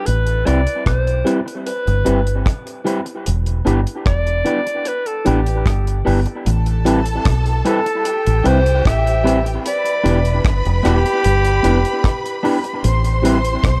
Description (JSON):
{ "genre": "lovers rock reggae", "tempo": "75 BPM", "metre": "4/4", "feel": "straight", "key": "A minor", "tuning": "A4 = 440 Hz", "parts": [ { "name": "clear alto saxophone", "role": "melody", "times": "0.0-12.4 s", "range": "G4 to E5", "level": "-24 LUFS", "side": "equal", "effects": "tape echo" }, { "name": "deep dub fingered electric bass", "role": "bass", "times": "0.1-13.8 s", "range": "E1 to C2", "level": "-19 LUFS", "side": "equal", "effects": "none" }, { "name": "deep reggae drum kit", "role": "drums", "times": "0.1-13.8 s", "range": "hi-hat, kick drum, rim click", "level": "-23 LUFS", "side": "equal", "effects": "none" }, { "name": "mellow tine electric piano", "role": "accompaniment", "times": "0.5-13.4 s", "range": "C4 to B4", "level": "-26 LUFS", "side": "equal", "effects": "tape echo" }, { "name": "electric guitar through a small old amp", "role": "stabs", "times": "0.5-13.4 s", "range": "G3 to B4", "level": "-26 LUFS", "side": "equal", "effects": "tape echo" }, { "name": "warm studio violin section", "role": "second line", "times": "6.5-13.8 s", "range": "G4 to C6", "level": "-27 LUFS", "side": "equal", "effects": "tape echo" } ], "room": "little or no reverb", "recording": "dark, warm production", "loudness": "-17 LUFS", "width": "mono", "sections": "0.0-6.5 A section; 6.5-13.8 B section", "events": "none", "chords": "0.1 Am9 (rootless); 3.3 Em7; 6.5 Am9; 9.6 Em7; 12.8 Am9" }